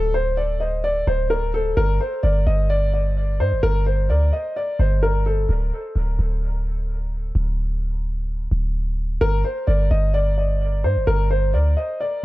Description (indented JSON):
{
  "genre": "hip hop",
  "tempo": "129 BPM",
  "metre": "4/4",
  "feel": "half-time",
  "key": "G minor",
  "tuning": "A4 = 440 Hz",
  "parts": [
    { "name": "dark concert grand piano", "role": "melody", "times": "0.0-5.5, 9.2-12.2 s", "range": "A4 to Eb5", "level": "-23 LUFS", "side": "left 1 dB", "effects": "dub echo" },
    { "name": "warm 808-style bass", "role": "bass", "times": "0.0-11.8 s", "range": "D1 to G2", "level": "-20 LUFS", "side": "equal", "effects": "none" }
  ],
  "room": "studio reverb",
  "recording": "echo-heavy mix",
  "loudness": "-19 LUFS",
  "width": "side -18 dB against mid",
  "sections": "0.0-12.2 A section",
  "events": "break 5.5-9.2",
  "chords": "0.0 Csus2/D; 1.8 G5; 5.5 N.C.; 9.2 G5"
}